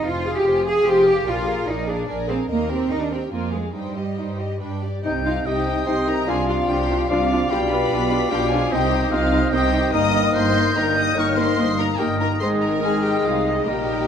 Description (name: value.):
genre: quick classical-period movement for symphony orchestra.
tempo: 146 BPM.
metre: 3/4.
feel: straight.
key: C minor, Eb major from 9.9 s.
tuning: A4 = 440 Hz.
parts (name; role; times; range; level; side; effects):
rich chamber violin section; melody; 0.0-14.1 s; D5 to Eb6; -29 LUFS; left 5 dB; none.
rich chamber violin section; second line; 0.0-14.1 s; Eb4 to Eb5; -29 LUFS; left 5 dB; none.
rich symphonic viola section; accompaniment; 0.0-14.1 s; G3 to Bb4; -28 LUFS; equal; none.
clear studio cello section; bass; 0.0-14.1 s; G2 to Ab4; -24 LUFS; right 2 dB; none.
rich chamber double bass section; bass; 0.0-14.1 s; F1 to G2; -28 LUFS; right 2 dB; none.
bright concert flute; second line; 5.0-14.1 s; Bb5 to G6; -28 LUFS; left 1 dB; none.
clear clarinet; second line; 5.0-14.1 s; Ab4 to Eb5; -29 LUFS; left 3 dB; none.
clear oboe; second line; 5.0-14.1 s; Eb5 to G5; -30 LUFS; right 2 dB; none.
warm bassoon; accompaniment; 5.0-14.1 s; C3 to G3; -27 LUFS; right 1 dB; none.
mellow French horn section; sustained chords; 5.0-14.1 s; Ab3 to F4; -26 LUFS; left 3 dB; none.
room: moderate scoring stage reverb, RT60 1.5 s.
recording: none.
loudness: -18 LUFS.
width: side -8 dB against mid.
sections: 0.0-5.0 A section; 5.0-14.1 B section.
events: none.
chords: 0.1 Fm; 1.3 Bb7; 2.5 Eb; 3.3 Fm; 3.7 Cm/G; 4.6 G; 5.0 Cm; 6.3 Fm69/C; 7.5 G7/B; 8.7 Cm; 9.9 Eb/G; 12.4 Ab.